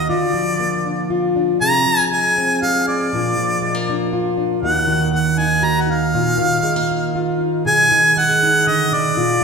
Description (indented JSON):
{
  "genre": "acoustic folk duo or small band",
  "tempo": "119 BPM",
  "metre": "3/4",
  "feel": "straight",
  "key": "unclear",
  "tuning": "A4 = 445 Hz",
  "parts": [
    { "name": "clear harmonica", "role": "melody", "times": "0.0-9.4 s", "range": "D5 to Bb5", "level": "-17 LUFS", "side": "right 1 dB", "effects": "none" },
    { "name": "fingerpicked plugged-in steel-string acoustic guitar", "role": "accompaniment", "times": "0.0-9.4 s", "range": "Eb2 to Ab4", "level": "-19 LUFS", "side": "equal", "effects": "none" }
  ],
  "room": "wet concert hall reverb, RT60 1.9 s",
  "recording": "recorded in a church or concert hall",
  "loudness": "-15 LUFS",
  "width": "side -5 dB against mid",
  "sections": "0.0-9.4 A section",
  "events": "none",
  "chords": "0.1 Bb/D; 1.6 Fm/C; 3.1 Bb; 4.6 Ebm; 6.1 Bbsus4; 7.6 Abm/Cb"
}